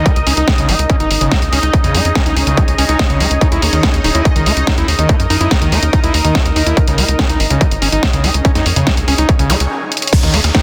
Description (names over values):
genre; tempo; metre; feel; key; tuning
psychedelic trance; 143 BPM; 4/4; straight; unclear; A4 = 440 Hz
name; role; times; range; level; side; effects
bubbling stepped-filter texture; sustained chords; 0.0-10.6 s; Eb4 to Eb5; -24 LUFS; equal; chorus, built-in reverb, sidechain pumping
screaming distorted acid line; riff; 0.0-10.6 s; Db3 to Fb4; -22 LUFS; equal; distortion, chorus, sidechain pumping, dub echo
tight sequencer bass; bass; 0.0-10.5 s; Eb1 to Gb2; -19 LUFS; equal; none
granular cloud pad; texture; 0.0-10.6 s; Db4 to Eb5; -26 LUFS; equal; built-in reverb, sidechain pumping
electronic kick drum; drums; 0.1-10.6 s; none; -17 LUFS; equal; distortion
techno drum kit; drums; 0.1-10.6 s; crash cymbal, hi-hat, rim click, snare drum; -20 LUFS; equal; none
resonant blip pluck; second line; 3.6-4.2, 10.3-10.4 s; Bb3 to Db4; -31 LUFS; equal; none
zap and downlifter; sound effects; 9.5-10.6 s; none; -24 LUFS; equal; none
room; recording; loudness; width
light reverb, digital ambience; dense, heavily limited modern master; -13 LUFS; mono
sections
0.0-10.1 A section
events
break 9.7-10.1; drum fill 9.9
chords
0.1 Db5; 3.4 Eb5; 6.8 Db5